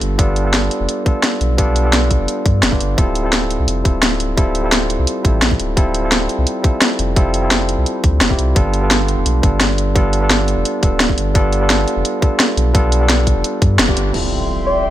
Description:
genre	liquid drum and bass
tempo	172 BPM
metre	4/4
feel	straight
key	unclear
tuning	A4 = 435 Hz
part	barky tine electric piano	accompaniment	0.0-14.9 s	G3 to A4	-19 LUFS	equal	low-pass filter, dub echo
part	warm sub bass	bass	0.0-14.9 s	D1 to G2	-18 LUFS	equal	none
part	drum and bass drum kit	drums	0.0-14.2 s	crash cymbal, hi-hat, snare drum	-17 LUFS	equal	none
part	electronic kick drum	drums	0.2-14.0 s	none	-15 LUFS	equal	none
part	airy breathy pad	sustained chords	14.2-14.9 s	E5 to C6	-22 LUFS	equal	chorus, sidechain pumping
part	impact	sound effects	14.1-14.9 s	none	-23 LUFS	equal	none
part	soft struck synth lead	melody	14.7-14.9 s	D5	-16 LUFS	left 1 dB	chorus, cassette tape
room	light reverb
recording	none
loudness	-13 LUFS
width	side -13 dB against mid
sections	0.0-14.1 A section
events	band accent 13.8; impact 14.1-14.9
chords	0.0 G9; 3.0 Dm11; 8.6 G9; 14.1 Dm11

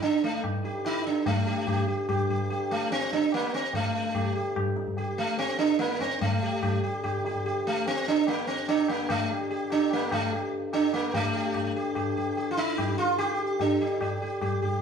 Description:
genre	indian classical, Hindustani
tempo	146 BPM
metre	3/4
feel	straight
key	G raga darbari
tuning	A4 = 440 Hz
part	sitar	melody	0.0-14.8 s	A3 to G4	-26 LUFS	right 2 dB	none
part	hand-pumped harmonium	drone	0.0-14.8 s	G2 to D3	-36 LUFS	left 4 dB	none
part	tabla	percussion	0.0-14.8 s	none	-32 LUFS	left 1 dB	none
room	wet stone room reverb, RT60 1.0 s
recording	band playing live in one room, studio reverb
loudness	-25 LUFS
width	side -6 dB against mid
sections	0.0-1.3 A section; 1.3-11.1 B section; 11.1-14.8 C section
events	none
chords	none

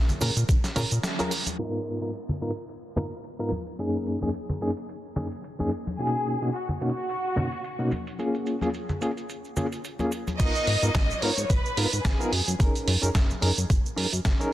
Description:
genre	nu-disco, nu disco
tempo	109 BPM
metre	4/4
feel	swing 56% on 16ths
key	G# dorian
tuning	A4 = 440 Hz
part	chorused synth bass	bass	0.0-1.0, 10.4-14.3 s	F#1 to A#2	-26 LUFS	equal	none
part	dusty soul sampler-style drum kit	drums	0.1-14.5 s	crash cymbal, hi-hat, shaker, snare drum	-30 LUFS	right 2 dB	low-pass filter on hats, low-pass filter on perc, low-pass filter on snare, low-pass filter on cymbals
part	cabasa and congas	percussion	0.1-10.4 s	none	-33 LUFS	left 1 dB	none
part	reed electric piano	accompaniment	0.2-14.5 s	F#2 to A#4	-29 LUFS	equal	tremolo, dub echo
part	electronic kick drum	drums	0.5-0.6, 10.4-14.4 s	none	-24 LUFS	equal	none
part	warm symphonic violin section	melody	6.0-12.5 s	F#4 to D#5	-30 LUFS	left 1 dB	dub echo
room	light reverb, digital ambience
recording	dense, heavily limited modern master, low-pass filter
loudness	-24 LUFS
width	side -14 dB against mid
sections	0.0-1.6 A section; 1.6-10.4 B section; 10.4-14.5 C section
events	break 1.0-1.6; band accent 1.0; filter sweep 1.6-10.4; drop 10.4-14.5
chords	0.0 A#m7; 1.6 G#m69; 3.5 F#69; 6.0 Bmaj9; 8.2 A#m7; 10.4 G#m69; 12.3 F#69

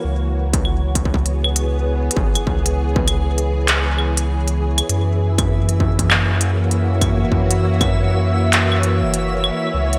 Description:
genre	IDM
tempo	99 BPM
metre	4/4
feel	swing 62% on 16ths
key	unclear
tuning	A4 = 440 Hz
part	soft string machine	sustained chords	0.0-10.0 s	E3 to C#5	-25 LUFS	equal	ensemble chorus, shimmer reverb
part	warm sub bass	bass	0.0-10.0 s	F#1 to F#2	-21 LUFS	equal	none
part	electronic kick drum	drums	0.5-7.9 s	none	-23 LUFS	equal	distortion
part	industrial drum kit	drums	0.5-10.0 s	claves, handclaps, hi-hat	-22 LUFS	equal	gated reverb, delay
part	twinkling granular texture	texture	4.9-10.0 s	E5	-30 LUFS	equal	built-in reverb, subtle chorus, shimmer reverb
room	moderate lush hall reverb, RT60 2.2 s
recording	bright 1980s-style digital production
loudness	-18 LUFS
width	mono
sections	0.0-10.0 A section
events	none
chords	0.0 C#m7; 4.9 F#7

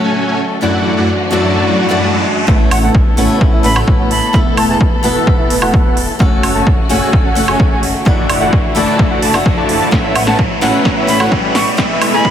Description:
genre	EDM, festival progressive house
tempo	129 BPM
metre	4/4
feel	straight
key	A major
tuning	A4 = 439 Hz
part	picked swing-style acoustic guitar	accompaniment	0.0-12.3 s	F#2 to A4	-18 LUFS	left 2 dB	sidechain pumping, dub echo
part	warm studio string section	sustained chords	0.0-12.3 s	F#2 to A4	-22 LUFS	left 1 dB	sidechain pumping
part	dense compressed supersaw	riff	0.0-12.3 s	F#2 to A5	-17 LUFS	right 1 dB	cassette tape, sidechain pumping, low-pass filter, dub echo
part	riser	sound effects	0.0-12.3 s	none	-22 LUFS	equal	none
part	wide unison lead	arpeggios	2.5-12.3 s	E5 to A5	-21 LUFS	equal	sidechain pumping, dub echo
part	wide detuned saw bass	bass	2.5-12.3 s	E1 to A1	-23 LUFS	equal	chorus, sidechain pumping
part	electronic kick drum	drums	2.5-12.3 s	none	-13 LUFS	equal	overdrive
part	bright silver concert flute	melody	2.7-4.8, 10.2-12.3 s	F#5 to C#6	-21 LUFS	right 2 dB	dub echo
part	big-room dance drum kit	drums	2.7-12.1 s	hi-hat, snare drum, woodblock	-20 LUFS	right 2 dB	overdrive
room	light reverb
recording	high-pass filter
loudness	-10 LUFS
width	side -9 dB against mid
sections	0.0-2.5 A section; 2.5-12.3 B section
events	riser 0.0-2.5, 2.5-12.3; build-up 2.5-12.3; filter sweep on supersaw synth 2.5-12.3; filter sweep on analog synth lead 2.5-12.3; filter sweep 2.5-12.3; drum fill 9.9-12.3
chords	0.0 F#m; 0.6 Dadd9/F#; 2.5 Aadd9; 4.3 Esus4; 6.2 F#m; 8.1 Dadd9/F#; 9.9 Aadd9; 11.8 Esus4

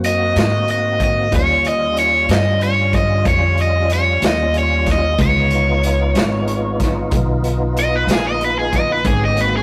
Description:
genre	slow blues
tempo	62 BPM (dotted quarters)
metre	12/8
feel	straight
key	unclear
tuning	A4 = 440 Hz
part	tonewheel organ	sustained chords	0.0-9.6 s	G3 to G4	-26 LUFS	equal	slow rotary speaker, chorus vibrato
part	upright bass	bass	0.0-9.6 s	Ab1 to Ab2	-22 LUFS	equal	none
part	raw garage drum kit	drums	0.0-9.5 s	hi-hat, kick drum, snare drum	-24 LUFS	equal	none
part	cranked stack guitar	melody	0.1-9.6 s	Ab4 to Eb5	-20 LUFS	equal	overdrive
room	moderate stone room reverb, RT60 1.2 s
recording	rough rehearsal-room recording, warm saturation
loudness	-16 LUFS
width	mono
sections	0.0-9.6 A section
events	overdriven electric guitar solo 0.0-9.6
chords	0.0 Ab9; 1.3 Eb9; 5.2 Db9; 9.1 Ab9

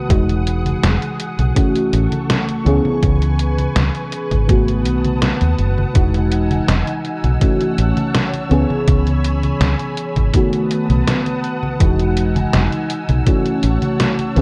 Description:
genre	vaporwave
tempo	82 BPM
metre	4/4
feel	straight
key	E major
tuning	A4 = 444 Hz
part	mellow FM electric piano	accompaniment	0.0-14.4 s	D#3 to G#4	-22 LUFS	equal	phaser, lush chorus, cassette tape, analog delay
part	soft string machine	sustained chords	0.0-14.4 s	D#4 to E6	-29 LUFS	equal	ensemble chorus, vintage 12-bit sampler grit
part	fingered electric bass	bass	0.1-14.4 s	E1 to D#2	-19 LUFS	equal	none
part	detuned 8-bit digital drum machine	drums	0.1-14.4 s	congas, hi-hat, snare drum	-24 LUFS	equal	none
part	electronic kick drum	drums	0.1-13.4 s	none	-18 LUFS	equal	none
room	light reverb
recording	cassette tape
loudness	-17 LUFS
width	mono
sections	0.0-14.4 A section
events	none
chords	0.1 Emaj9; 1.6 A6; 2.7 C#m7; 4.5 B7; 6.0 Emaj9; 7.4 A6; 8.5 C#m7; 10.3 B7; 11.8 Emaj9; 13.3 A6

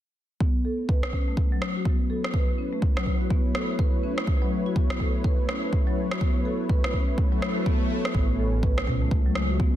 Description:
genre	afro house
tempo	124 BPM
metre	4/4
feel	swing 60% on 16ths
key	unclear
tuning	A4 = 440 Hz
part	warm analog pad	sustained chords	0.4-9.8 s	A3 to C#5	-34 LUFS	right 1 dB	chorus, sidechain pumping
part	marimba with soft mallets	arpeggios	0.4-9.7 s	F#3 to B4	-29 LUFS	left 2 dB	sidechain pumping, low-pass filter, ping-pong delay
part	electronic kick drum	drums	0.4-9.7 s	none	-24 LUFS	equal	overdrive
part	afro-pop drum kit	drums	1.0-9.5 s	rim click, toms	-32 LUFS	right 1 dB	overdrive
part	swell	sound effects	7.3-8.1 s	none	-34 LUFS	right 2 dB	none
part	smooth synth bass	bass	8.1-9.8 s	A1 to C#2	-27 LUFS	equal	sidechain pumping
room	little or no reverb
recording	dense, heavily limited modern master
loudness	-22 LUFS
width	side -12 dB against mid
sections	0.4-8.1 A section; 8.1-9.8 B section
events	filter sweep on analog synth pad 0.4-8.1; swell 7.3-8.1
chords	0.4 A

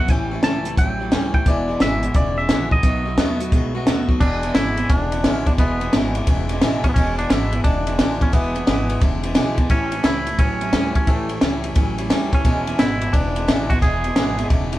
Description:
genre	rockabilly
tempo	175 BPM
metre	4/4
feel	swing 65% on 8ths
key	E mixolydian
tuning	A4 = 441 Hz
part	twangy electric guitar	melody	0.0-14.5 s	A3 to A5	-25 LUFS	equal	vibrato effect
part	picked swing-style acoustic guitar	accompaniment	0.0-14.8 s	E2 to F#4	-26 LUFS	left 1 dB	none
part	electric guitar through a small old amp	riff	0.0-14.8 s	E2 to A3	-27 LUFS	right 2 dB	none
part	upright bass	bass	0.0-14.8 s	E1 to D#2	-26 LUFS	equal	none
part	compact cocktail drum kit	drums	0.1-14.8 s	crash cymbal, hi-hat, kick drum, ride cymbal, snare drum	-19 LUFS	equal	none
room	light reverb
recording	band playing live in one room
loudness	-17 LUFS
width	side -15 dB against mid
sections	0.0-4.2 A section; 4.2-14.8 A section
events	none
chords	0.1 A7; 1.5 E7; 2.8 B7; 4.2 E7; 9.7 A7; 12.5 E7

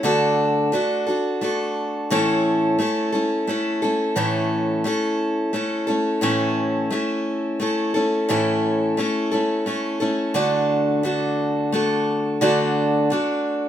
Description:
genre	country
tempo	87 BPM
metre	3/4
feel	straight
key	A major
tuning	A4 = 440 Hz
part	picked steel-string acoustic guitar	solo	0.0-13.7 s	A2 to A4	-19 LUFS	equal	none
room	moderate studio reverb, RT60 0.8 s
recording	minimal, uncompressed stereo recording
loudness	-19 LUFS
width	side -10 dB against mid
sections	0.0-13.7 A section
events	none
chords	0.0 D; 2.1 A; 10.4 D

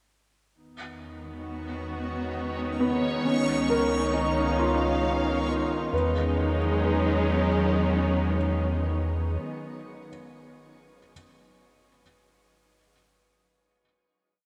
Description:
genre	ambient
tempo	67 BPM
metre	3/4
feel	straight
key	E lydian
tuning	A4 = 440 Hz
part	backwards swelling texture	texture	1.9-5.9 s	C#5 to C#6	-39 LUFS	equal	built-in reverb, shimmer reverb
part	dark symphonic string section	sustained chords	0.6-9.4 s	F#3 to E#5	-30 LUFS	equal	shimmer reverb
part	warm sub bass	bass	0.6-9.4 s	C#2 to E2	-32 LUFS	equal	tube saturation
part	bowed-like drone	drone	0.8-9.5 s	D#3 to B3	-36 LUFS	equal	built-in reverb
part	felt-muted upright piano	arpeggios	2.8-11.1 s	B3 to B4	-32 LUFS	equal	tape echo, shimmer reverb
room	wet lush hall reverb, RT60 3.1 s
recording	none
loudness	-26 LUFS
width	mono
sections	0.6-5.9 A section; 5.9-8.6 final chord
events	fade-in on string section 0.6-5.9; fade-in on sub bass 0.6-5.9; fade-in on synth texture 0.6-5.9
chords	0.6 Emaj7; 3.2 C#7; 5.9 Emaj7

